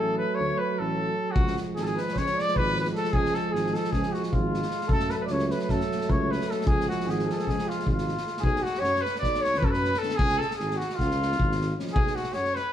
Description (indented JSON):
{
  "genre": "balkan folk, Balkan brass band",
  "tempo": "306 BPM (eighths)",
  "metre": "9/8",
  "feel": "straight",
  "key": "C# phrygian dominant",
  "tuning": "A4 = 440 Hz",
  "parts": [
    { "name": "warm trumpet", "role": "melody", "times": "0.0-12.7 s", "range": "E#4 to D5", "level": "-29 LUFS", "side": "left 1 dB", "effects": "none" },
    { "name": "warm flugelhorn", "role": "second line", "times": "0.0-12.7 s", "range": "E#4 to D5", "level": "-33 LUFS", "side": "right 2 dB", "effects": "none" },
    { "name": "dark euphonium", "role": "accompaniment", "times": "0.0-11.9 s", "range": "D3 to F#3", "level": "-32 LUFS", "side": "right 4 dB", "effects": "none" },
    { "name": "mellow trombone", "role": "accompaniment", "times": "0.0-11.9 s", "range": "G#3 to C#4", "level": "-33 LUFS", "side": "left 1 dB", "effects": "none" },
    { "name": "dark tuba", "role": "bass", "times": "0.0-12.6 s", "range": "G#1 to F#2", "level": "-31 LUFS", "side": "equal", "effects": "none" },
    { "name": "vintage drum kit", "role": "percussion", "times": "1.4-12.6 s", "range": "kick drum, snare drum", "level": "-29 LUFS", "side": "equal", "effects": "none" }
  ],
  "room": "moderate stone room reverb, RT60 1.3 s",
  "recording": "band playing live in one room",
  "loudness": "-24 LUFS",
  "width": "side -10 dB against mid",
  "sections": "0.0-8.4 A section; 8.4-12.7 B section",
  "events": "none",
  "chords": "0.0 D (rootless); 1.4 C#; 4.9 F#m; 6.7 C#; 8.4 Bm; 10.2 C#; 12.0 B5",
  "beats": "0.18 0.38 0.58 0.77 0.97 1.17 | 1.36 1.56 1.75 1.95 2.15 2.34 2.54 2.74 2.93 | 3.13 3.32 3.52 3.72 3.91 4.11 4.30 4.50 4.70 | 4.89 5.09 5.29 5.48 5.68 5.88 6.07 6.27 6.46 | 6.66 6.86 7.05 7.25 7.45 7.64 7.84 8.03 8.23 | 8.43 8.62 8.82 9.02 9.21 9.41 9.60 9.80 9.99 | 10.19 10.39 10.58 10.78 10.98 11.17 11.37 11.56 11.76 | 11.96 12.15 12.35 12.55"
}